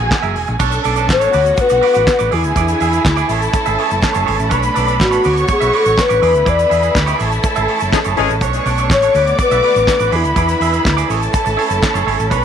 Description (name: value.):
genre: disco.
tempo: 123 BPM.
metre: 4/4.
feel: straight.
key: unclear.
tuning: A4 = 439 Hz.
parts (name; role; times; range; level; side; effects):
warm symphonic violin section; second line; 0.0-12.4 s; F#4 to D6; -19 LUFS; right 1 dB; none.
semi-hollow electric guitar; accompaniment; 0.0-12.4 s; D4 to E5; -21 LUFS; right 15 dB; spring reverb.
clear studio string section; sustained chords; 0.0-12.4 s; D3 to F#4; -24 LUFS; equal; none.
hollow-body short-scale fingered electric bass; bass; 0.0-12.4 s; E1 to E2; -20 LUFS; equal; none.
damped 70s drum kit; drums; 0.1-12.4 s; crash cymbal, handclaps, hi-hat, kick drum, snare drum; -19 LUFS; equal; none.
egg shaker; percussion; 0.6-12.4 s; none; -36 LUFS; left 16 dB; none.
mellow hollow wooden-headed alto flute; melody; 1.1-11.3 s; E4 to D5; -15 LUFS; left 3 dB; none.
mellow horn section; stabs; 7.9-8.3 s; E3 to G#4; -19 LUFS; left 13 dB; tape echo.
room: light reverb, studio ambience.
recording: 1960s-style stereo with parts hard left and right.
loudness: -12 LUFS.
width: side -8 dB against mid.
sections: 0.6-12.4 A section.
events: band accent 6.5-8.4.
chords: 0.0 F#9; 0.6 Bm9; 1.3 D6; 2.3 E7; 3.3 Amaj7; 4.5 Bm9; 5.2 D6; 6.2 E7; 7.2 Amaj7; 8.4 Bm9; 9.1 D6; 10.1 E7; 11.1 Amaj7.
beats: 0.11 | 0.60 1.09 1.58 2.06 | 2.55 3.04 3.53 4.02 | 4.51 5.00 5.49 5.97 | 6.46 6.95 7.44 7.92 | 8.41 8.90 9.38 9.87 | 10.36 10.85 11.33 11.82 | 12.31.